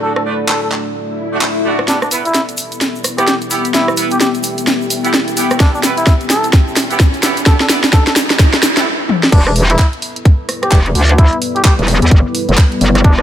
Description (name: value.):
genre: bass house.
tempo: 129 BPM.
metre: 4/4.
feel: swing 61% on 16ths.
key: E minor.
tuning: A4 = 440 Hz.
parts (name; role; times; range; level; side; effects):
trumpet with cup mute; melody; 0.0-13.2 s; D4 to A4; -20 LUFS; equal; tape echo.
dark analog pad; sustained chords; 0.0-13.2 s; G3 to E5; -21 LUFS; left 3 dB; chorus, sidechain pumping.
warm horn section; stabs; 0.0-8.9 s; A3 to B4; -22 LUFS; right 4 dB; sidechain pumping, low-pass filter, tape echo.
warbly tape-like pad; texture; 0.0-13.2 s; E4 to G5; -29 LUFS; equal; chorus, built-in reverb, sidechain pumping.
garage drum kit; drums; 0.2-13.2 s; crash cymbal, handclaps, hi-hat, rim click, snare drum, toms; -15 LUFS; equal; overdrive.
swell, riser and noise sweep; sound effects; 1.1-9.3 s; none; -24 LUFS; equal; none.
egg shaker; percussion; 1.9-8.8 s; none; -25 LUFS; left 2 dB; none.
electronic kick drum; drums; 5.6-13.2 s; none; -9 LUFS; equal; overdrive.
metallic wobble bass; bass; 9.3-13.2 s; E1 to E2; -12 LUFS; equal; chorus, tube saturation, sidechain pumping.
room: light reverb, digital ambience.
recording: none.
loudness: -10 LUFS.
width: side -11 dB against mid.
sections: 0.0-1.9 A section; 1.9-9.3 B section; 9.3-13.2 C section.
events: swell 1.1-1.9; build-up 1.9-9.3; drum fill 1.9-8.9, 9.1; riser 1.9-8.9; noise sweep 7.5-9.3; stop 8.9-9.3; drop 9.3-13.2.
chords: 0.0 D; 1.9 Em.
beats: | 0.02 0.49 0.95 1.42 | 1.88 2.35 2.81 3.28 | 3.74 4.21 4.67 5.14 | 5.60 6.07 6.53 7.00 | 7.46 7.93 8.39 8.86 | 9.32 9.79 10.25 10.72 | 11.18 11.65 12.11 12.58 | 13.04.